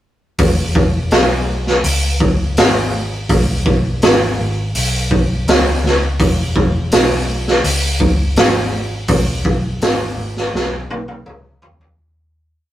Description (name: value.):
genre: blues rock power trio and southern rock.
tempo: 83 BPM.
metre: 4/4.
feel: straight.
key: E major.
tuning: A4 = 443 Hz.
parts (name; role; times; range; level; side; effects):
vintage muted picked electric bass; bass; 0.4-12.0 s; E1 to C#2; -20 LUFS; equal; none.
raw garage drum kit; drums; 0.4-12.0 s; hi-hat, kick drum, snare drum, toms; -14 LUFS; equal; none.
room: light reverb.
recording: rough rehearsal-room recording, tube saturation.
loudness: -13 LUFS.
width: side -13 dB against mid.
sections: 0.4-12.0 riff.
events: fade-out 9.1-12.0; drum fill 10.5-12.0.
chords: none.